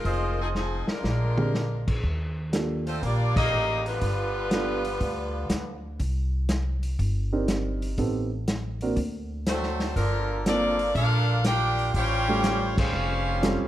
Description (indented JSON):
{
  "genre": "jazz, big band swing",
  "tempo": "121 BPM",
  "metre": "4/4",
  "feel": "swing 68% on 8ths",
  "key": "unclear",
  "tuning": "A4 = 440 Hz",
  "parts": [
    { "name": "bright saxophone section", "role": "melody", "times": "0.0-5.8, 9.5-13.7 s", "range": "F3 to G5", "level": "-28 LUFS", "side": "left 1 dB", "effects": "none" },
    { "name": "warm trumpet section", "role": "stabs", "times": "0.0-0.8 s", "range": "F4 to Eb5", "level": "-31 LUFS", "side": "equal", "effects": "none" },
    { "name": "upright bass", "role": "bass", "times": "0.0-13.7 s", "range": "F1 to Eb2", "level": "-28 LUFS", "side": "equal", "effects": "none" },
    { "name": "vintage drum kit", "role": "drums", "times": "0.0-13.6 s", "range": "crash cymbal, hi-hat, kick drum, snare drum, toms", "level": "-30 LUFS", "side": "equal", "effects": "none" },
    { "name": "muted trombone section", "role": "second line", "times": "0.9-5.8, 9.5-13.7 s", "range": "D3 to G4", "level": "-33 LUFS", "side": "right 2 dB", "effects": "none" },
    { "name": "dark upright piano", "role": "accompaniment", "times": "1.4-13.7 s", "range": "G3 to Bb4", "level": "-29 LUFS", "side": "right 2 dB", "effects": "none" }
  ],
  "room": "light reverb",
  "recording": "none",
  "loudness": "-24 LUFS",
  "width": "side -13 dB against mid",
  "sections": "0.0-2.0 A section; 2.0-13.7 B section",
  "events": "drum fill 0.5-1.5; band accent 3.3, 12.7",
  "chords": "0.0 Fm7; 1.0 Bb13; 2.0 Ebmaj9#11; 4.0 G7; 6.0 Cm9; 8.0 Am7b5; 9.0 D7; 10.0 Gm11; 11.9 A7alt"
}